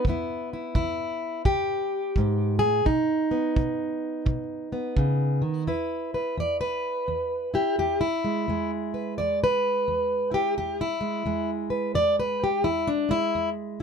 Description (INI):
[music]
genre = acoustic country blues, solo or duo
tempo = 86 BPM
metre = 4/4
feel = swing 63% on 8ths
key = E major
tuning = A4 = 440 Hz
[part]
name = fingerpicked plugged-in steel-string acoustic guitar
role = melody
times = 0.0-13.8 s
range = E2 to D5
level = -24 LUFS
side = equal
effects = none
[part]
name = kick drum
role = drums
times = 0.0-5.2 s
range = none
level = -26 LUFS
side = right 1 dB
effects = none
[sound]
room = light reverb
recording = none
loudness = -24 LUFS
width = side -6 dB against mid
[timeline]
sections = 0.0-5.7 A section; 5.7-13.8 B section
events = steel-string acoustic guitar solo 5.7-13.8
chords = 0.0 E; 2.9 B; 5.7 E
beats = | 0.05 0.75 1.45 2.15 | 2.85 3.56 4.26 4.96 | 5.66 6.36 7.07 7.77 | 8.47 9.16 9.86 10.56 | 11.26 11.96 12.65 13.35